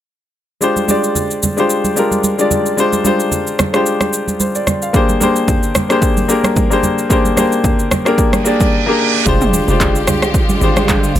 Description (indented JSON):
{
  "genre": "amapiano",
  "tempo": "111 BPM",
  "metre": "4/4",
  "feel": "swing 55% on 16ths",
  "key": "F dorian",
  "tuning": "A4 = 440 Hz",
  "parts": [
    { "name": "clear concert grand piano", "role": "accompaniment", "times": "0.6-11.2 s", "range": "Ab3 to F5", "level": "-14 LUFS", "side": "left 2 dB", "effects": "none" },
    { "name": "deep house drum kit", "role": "drums", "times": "0.6-11.2 s", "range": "handclaps, hi-hat, kick drum, rim click, shaker, toms", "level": "-16 LUFS", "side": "equal", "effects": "overdrive" },
    { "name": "congas", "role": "percussion", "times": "0.8-11.2 s", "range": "none", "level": "-21 LUFS", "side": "right 3 dB", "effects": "none" },
    { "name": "reverse cymbal", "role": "sound effects", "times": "8.4-9.3 s", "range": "none", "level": "-18 LUFS", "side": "right 8 dB", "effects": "none" },
    { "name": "dark studio string section", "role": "sustained chords", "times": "9.3-11.2 s", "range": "D3 to G4", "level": "-20 LUFS", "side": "right 2 dB", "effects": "sidechain pumping" },
    { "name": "hollow log drum bass", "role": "bass", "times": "9.3-11.2 s", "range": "F1 to C2", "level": "-18 LUFS", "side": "equal", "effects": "none" }
  ],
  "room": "little or no reverb",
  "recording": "none",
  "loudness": "-12 LUFS",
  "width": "side -11 dB against mid",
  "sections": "0.6-9.3 A section; 9.3-11.2 B section",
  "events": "reverse cymbal 8.4-9.3; drop 9.3-11.2",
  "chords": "0.6 Fm69; 4.9 Bb13; 9.3 Fm69"
}